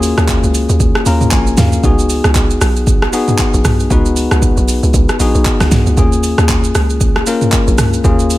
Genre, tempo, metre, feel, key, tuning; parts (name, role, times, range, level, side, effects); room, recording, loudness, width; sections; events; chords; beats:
amapiano; 116 BPM; 4/4; swing 58% on 16ths; Eb minor; A4 = 437 Hz
bell-like tine electric piano; accompaniment; 0.0-8.4 s; Bb3 to Bb5; -16 LUFS; left 3 dB
hollow log drum bass; bass; 0.0-8.4 s; Bb1 to Eb2; -14 LUFS; equal
deep house drum kit; drums; 0.0-8.4 s; handclaps, hi-hat, kick drum, rim click, shaker, snare drum, toms; -14 LUFS; right 1 dB
digital ambience; -10 LUFS; side -16 dB against mid
0.0-8.4 A section
tine electric piano fill 0.8-1.8
0.0 Eb9sus4; 1.8 Db9sus4; 6.0 Eb9sus4
0.28 0.80 1.32 | 1.84 2.35 2.87 3.39 | 3.90 4.42 4.94 5.46 | 5.97 6.49 7.01 7.53 | 8.04